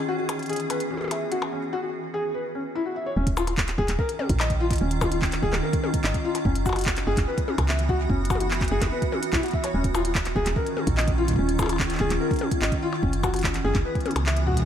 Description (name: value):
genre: IDM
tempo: 146 BPM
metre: 4/4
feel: straight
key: Eb phrygian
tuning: A4 = 437 Hz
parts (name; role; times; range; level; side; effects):
- icy glass pad; sustained chords; 0.0-14.7 s; Eb3 to Ab4; -30 LUFS; right 2 dB; chorus, built-in reverb, vintage 12-bit sampler grit
- felt-muted upright piano; arpeggios; 0.1-14.5 s; Db4 to Fb5; -28 LUFS; left 3 dB; digital delay
- glitchy drum kit; drums; 0.3-14.7 s; handclaps, hi-hat, percussion blips, shaker, toms; -30 LUFS; left 2 dB; studio reverb, digital delay
- woody FM bass; bass; 3.2-14.6 s; Eb1 to Db2; -26 LUFS; equal; tube saturation
- electronic kick drum; drums; 3.3-14.6 s; none; -27 LUFS; equal; studio reverb
room: light reverb, digital ambience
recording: none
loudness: -22 LUFS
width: side -9 dB against mid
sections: 0.0-3.2 A section; 3.2-14.7 B section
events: break 1.5-3.2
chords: 0.0 Gb9sus4; 3.2 Eb7sus2; 6.5 Gb7sus4; 9.7 Eb7sus2; 13.0 Gb7sus4